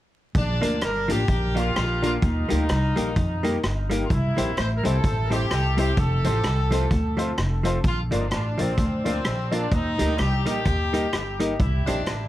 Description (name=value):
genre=ska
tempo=128 BPM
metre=4/4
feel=swing 59% on 8ths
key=Bb major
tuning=A4 = 440 Hz
part: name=street-band drum kit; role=drums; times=0.3-12.2 s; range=hi-hat, kick drum, rim click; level=-27 LUFS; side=equal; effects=none
part: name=clear horn section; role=melody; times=0.4-12.3 s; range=C4 to C5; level=-28 LUFS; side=equal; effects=dub echo
part: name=upright bass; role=bass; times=0.4-12.3 s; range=F1 to F2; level=-25 LUFS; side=equal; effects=none
part: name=hollow-body jazz guitar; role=accompaniment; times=0.6-12.0 s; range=F3 to G4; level=-28 LUFS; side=right 2 dB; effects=none
part: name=warm upright piano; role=stabs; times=0.6-12.0 s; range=Bb3 to E5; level=-30 LUFS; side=left 3 dB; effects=dub echo
room=light reverb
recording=vinyl crackle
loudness=-21 LUFS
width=side -14 dB against mid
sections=0.4-7.8 A section; 7.8-12.3 B section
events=none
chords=0.4 Bb; 2.2 Eb; 4.1 C; 6.0 F; 7.8 Bb; 9.7 Eb; 11.6 C